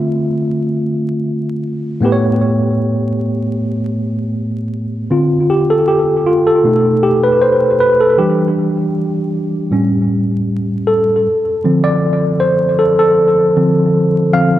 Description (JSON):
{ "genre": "R&B", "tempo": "78 BPM", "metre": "4/4", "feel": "swing 54% on 16ths", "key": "D dorian", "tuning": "A4 = 440 Hz", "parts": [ { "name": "tine electric piano", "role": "solo", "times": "0.0-14.6 s", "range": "A2 to F5", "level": "-12 LUFS", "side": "equal", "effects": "overdrive, fast stereo tremolo, tape echo" } ], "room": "wet spring reverb, RT60 1.1 s", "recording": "echo-heavy mix, vinyl crackle", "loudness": "-12 LUFS", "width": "side -13 dB against mid", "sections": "0.0-5.1 A section; 5.1-14.6 B section", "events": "tine electric piano solo 5.1-14.6", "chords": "0.0 Dm7; 2.0 A7; 5.1 Dm7; 6.6 B7b9b13; 8.2 Em7; 9.7 A7; 11.3 Dm7" }